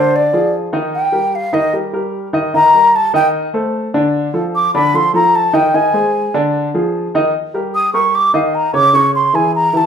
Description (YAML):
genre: jazz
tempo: 150 BPM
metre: 4/4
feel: straight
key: unclear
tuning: A4 = 440 Hz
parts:
  - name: breathy mellow silver concert flute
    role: melody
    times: 0.0-9.9 s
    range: C5 to Eb6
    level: -12 LUFS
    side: equal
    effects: none
  - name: warm baby grand piano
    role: accompaniment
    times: 0.0-9.9 s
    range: Db3 to Eb5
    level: -16 LUFS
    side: equal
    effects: none
room: moderate large studio reverb, RT60 0.8 s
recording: minimal, uncompressed stereo recording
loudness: -12 LUFS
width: side -8 dB against mid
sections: 0.0-7.3 A section; 7.3-9.9 A section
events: flute solo 0.0-9.9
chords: 0.1 Ddim; 0.9 Eb; 3.3 Cm69; 4.1 Dm; 5.7 Ab; 6.5 Ddim; 7.3 Eb; 8.9 Dbmmaj7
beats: 0.14 0.54 | 0.94 1.34 1.74 2.14 | 2.54 2.94 3.34 3.74 | 4.14 4.54 4.94 5.34 | 5.74 6.14 6.54 6.94 | 7.34 7.74 8.13 8.54 | 8.93 9.33 9.73